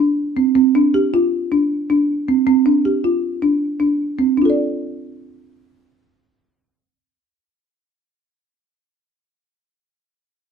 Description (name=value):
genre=progressive instrumental, progressive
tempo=157 BPM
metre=5/4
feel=straight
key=D minor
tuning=A4 = 440 Hz
part: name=folk marimba with soft mallets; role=solo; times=0.0-9.1 s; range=C4 to D5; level=-15 LUFS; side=right 1 dB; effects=none
room=wet studio reverb, RT60 0.7 s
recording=band playing live in one room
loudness=-15 LUFS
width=side -6 dB against mid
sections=0.0-4.4 A section; 4.4-8.2 B section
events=none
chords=0.0 Csus24; 4.4 Dm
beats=0.18 | 0.56 0.94 1.32 1.71 2.09 | 2.47 2.85 3.23 3.62 4.00 | 4.38 4.76 5.14 5.52 5.91 | 6.29 6.67 7.05 7.43 7.82